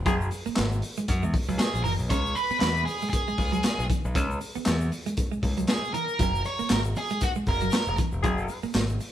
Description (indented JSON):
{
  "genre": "funk",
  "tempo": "117 BPM",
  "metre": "4/4",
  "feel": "swing 56% on 16ths",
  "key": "unclear",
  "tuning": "A4 = 439 Hz",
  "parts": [
    { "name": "modern bright picked electric bass", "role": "bass", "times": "0.0-9.0 s", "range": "E1 to F#2", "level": "-29 LUFS", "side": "left 1 dB", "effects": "none" },
    { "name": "breathy tenor saxophone", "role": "second line", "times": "0.1-0.2, 8.2-8.6 s", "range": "G#4", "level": "-31 LUFS", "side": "left 5 dB", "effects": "none" },
    { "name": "clean electric guitar", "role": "riff", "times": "0.1-9.0 s", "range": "E3 to C#4", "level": "-33 LUFS", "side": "right 3 dB", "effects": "none" },
    { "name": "crunchy breakbeat drum kit", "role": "drums", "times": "0.1-9.1 s", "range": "handclaps, hi-hat, kick drum, snare drum", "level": "-28 LUFS", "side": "equal", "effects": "none" },
    { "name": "tube shaker", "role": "percussion", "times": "0.1-9.1 s", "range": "none", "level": "-46 LUFS", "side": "left 4 dB", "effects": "none" },
    { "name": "octave-fuzz lead guitar", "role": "melody", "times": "1.6-8.0 s", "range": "F#4 to C#5", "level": "-28 LUFS", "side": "right 1 dB", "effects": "distortion" }
  ],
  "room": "moderate stone room reverb, RT60 1.1 s",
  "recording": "band playing live in one room",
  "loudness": "-24 LUFS",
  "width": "side -11 dB against mid",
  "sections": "0.0-9.1 A section",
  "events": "band accent 0.1-2.1, 8.2-9.1",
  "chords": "0.0 F#add9; 2.1 C#m7; 6.2 F#9",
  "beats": "| 0.06 0.57 1.08 1.59 | 2.10 2.62 3.13 3.64 | 4.15 4.66 5.17 5.68 | 6.19 6.70 7.21 7.72 | 8.23 8.75"
}